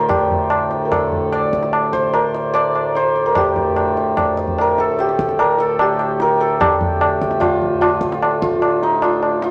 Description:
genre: indian classical, Hindustani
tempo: 148 BPM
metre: 4/4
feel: straight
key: D raga bhairavi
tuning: A4 = 440 Hz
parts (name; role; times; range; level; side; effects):
- santur; melody; 0.0-9.5 s; Eb4 to D5; -20 LUFS; equal; none
- hand-pumped harmonium; drone; 0.0-9.5 s; D2 to A2; -26 LUFS; equal; none
- tabla; percussion; 0.1-9.5 s; none; -22 LUFS; equal; none
room: wet studio reverb, RT60 0.8 s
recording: none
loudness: -17 LUFS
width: mono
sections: 0.0-6.6 A section; 6.6-9.5 B section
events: none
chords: none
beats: | 0.09 0.50 0.91 1.32 | 1.73 2.13 2.54 2.95 | 3.36 3.76 4.17 4.58 | 4.98 5.39 5.79 6.20 | 6.60 7.00 7.41 7.81 | 8.21 8.61 9.02 9.42

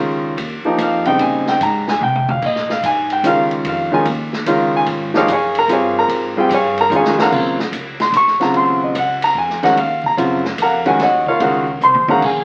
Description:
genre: modal jazz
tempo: 147 BPM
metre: 3/4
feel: swing 66% on 8ths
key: Eb dorian from 7.3 s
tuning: A4 = 436 Hz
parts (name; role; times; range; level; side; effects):
- warm baby grand piano; accompaniment; 0.0-12.4 s; Db3 to Db6; -17 LUFS; equal; none
- upright bass; bass; 0.0-12.4 s; Gb1 to C3; -30 LUFS; equal; none
- vintage drum kit; drums; 0.4-12.3 s; crash cymbal, hi-hat, kick drum, ride cymbal, snare drum, toms; -28 LUFS; equal; none
room: wet club reverb, RT60 0.8 s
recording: very old 78 rpm record, vinyl crackle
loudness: -16 LUFS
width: mono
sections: 0.0-7.3 A section; 7.3-12.4 A section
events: drum fill 2.0-2.4, 6.9-7.3, 11.8-12.2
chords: 0.0 Bbm11; 2.4 Db; 7.3 Ebm9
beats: 0.38 0.79 | 1.20 1.61 2.01 | 2.42 2.83 3.24 | 3.65 4.06 4.46 | 4.87 5.28 5.69 | 6.10 6.51 6.91 | 7.32 7.73 8.14 | 8.55 8.96 9.37 | 9.77 10.18 10.59 | 11.00 11.41 11.82 | 12.22

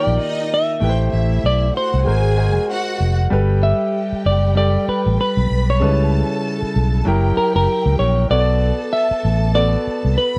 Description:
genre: soul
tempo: 96 BPM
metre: 4/4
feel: swing 58% on 16ths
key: G major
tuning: A4 = 441 Hz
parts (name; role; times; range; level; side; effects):
- semi-hollow electric guitar; melody; 0.0-10.4 s; A#4 to E5; -23 LUFS; equal; none
- warm symphonic string section; second line; 0.0-10.4 s; Eb4 to B5; -29 LUFS; equal; none
- clear concert grand piano; accompaniment; 0.0-10.4 s; C#3 to Eb5; -25 LUFS; equal; none
- fingered electric bass; bass; 0.1-10.4 s; F1 to C#2; -19 LUFS; equal; none
room: small room ambience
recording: dry, close 1970s-style studio recording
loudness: -18 LUFS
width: mono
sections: 0.0-3.3 A section; 3.3-10.4 B section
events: none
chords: 0.0 Ebmaj7; 0.8 Am7; 2.1 Ab9; 3.3 Gmaj9; 5.8 C#m7b5; 7.1 F#7b9; 8.3 Bm7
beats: 0.19 | 0.82 1.44 2.07 2.69 | 3.31 3.94 4.56 5.19 | 5.81 6.43 7.06 7.68 | 8.31 8.93 9.55 10.18

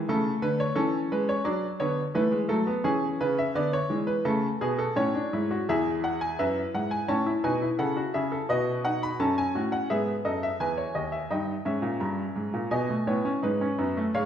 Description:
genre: classical, baroque-style 4-part fugue for grand piano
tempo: 85 BPM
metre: 4/4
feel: straight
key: A major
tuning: A4 = 441 Hz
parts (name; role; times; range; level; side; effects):
- bright baby grand piano; solo; 0.0-14.3 s; D#2 to B5; -25 LUFS; equal; none
room: wet scoring stage reverb, RT60 1.6 s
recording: recorded in a church or concert hall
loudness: -25 LUFS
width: side -9 dB against mid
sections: 0.0-11.3 A section; 11.3-14.3 B section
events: none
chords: 0.1 A/C#; 1.5 D; 2.9 E7; 4.3 A; 5.7 E; 7.1 A; 8.5 B7; 9.9 E; 11.3 D#7/G; 12.7 G#m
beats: | 0.06 0.76 1.46 2.15 | 2.86 3.56 4.26 4.96 | 5.66 6.37 7.07 7.77 | 8.48 9.19 9.89 10.60 | 11.31 12.02 12.73 13.43 | 14.14

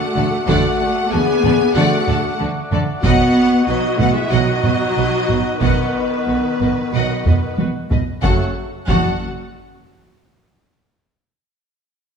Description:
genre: cinematic, epic orchestral film score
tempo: 93 BPM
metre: 4/4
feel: straight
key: F# minor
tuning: A4 = 440 Hz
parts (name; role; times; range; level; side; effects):
- rich studio violin section; melody; 0.0-9.2 s; B4 to G#5; -26 LUFS; left 3 dB; none
- warm symphonic viola section; accompaniment; 0.0-9.2 s; D#3 to F#4; -21 LUFS; right 1 dB; none
- mellow French horn section; sustained chords; 0.0-8.5 s; F#3 to G#4; -22 LUFS; left 4 dB; none
- warm woodwind section; sustained chords; 0.0-8.5 s; A3 to F#5; -26 LUFS; equal; none
- rich symphonic violin section; second line; 0.2-9.2 s; F#4 to F#5; -26 LUFS; left 2 dB; none
- rich symphonic double bass section; bass; 0.2-9.2 s; F#1 to D2; -23 LUFS; right 4 dB; none
- warm studio cello section; bass; 0.2-9.2 s; F#2 to D3; -23 LUFS; right 4 dB; none
- taiko ensemble; drums; 0.2-10.1 s; none; -21 LUFS; equal; none
- bright trombone section; sustained chords; 0.5-8.5 s; C#3 to A3; -27 LUFS; right 4 dB; none
room: moderate scoring stage reverb, RT60 1.5 s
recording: studio ambience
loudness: -15 LUFS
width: side -6 dB against mid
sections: 0.0-8.2 A section; 8.2-10.8 B section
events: drum fill 7.3-8.2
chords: 0.0 D; 3.0 B; 8.2 F#m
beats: | 0.47 1.12 1.75 2.39 | 3.03 3.67 4.31 4.96 | 5.61 6.27 6.92 7.58 | 8.24 8.88 9.52

